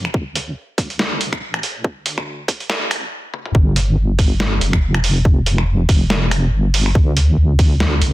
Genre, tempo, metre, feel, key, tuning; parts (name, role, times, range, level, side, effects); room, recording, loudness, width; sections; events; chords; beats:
deep dubstep; 141 BPM; 4/4; swing 56% on 16ths, half-time; A4 = 440 Hz
deep soft wobble bass; bass; 0.0-8.1 s; F1 to D2; -16 LUFS; equal; chorus, tube saturation
trip hop sampler-style drum kit; drums; 0.0-8.1 s; finger snaps, hi-hat, snare drum, toms; -21 LUFS; right 1 dB
electronic kick drum; drums; 0.1-7.7 s; -15 LUFS; equal
little or no reverb; dense, heavily limited modern master, high-pass filter; -15 LUFS; side -17 dB against mid
0.0-3.5 A section; 3.5-8.1 B section
build-up 0.0-3.5; stop 3.1-3.5; drum fill 3.3; drop 3.5-8.1
| 0.14 0.57 0.99 1.42 | 1.84 2.27 2.70 3.12 | 3.55 3.97 4.40 4.82 | 5.25 5.67 6.10 6.53 | 6.95 7.38 7.80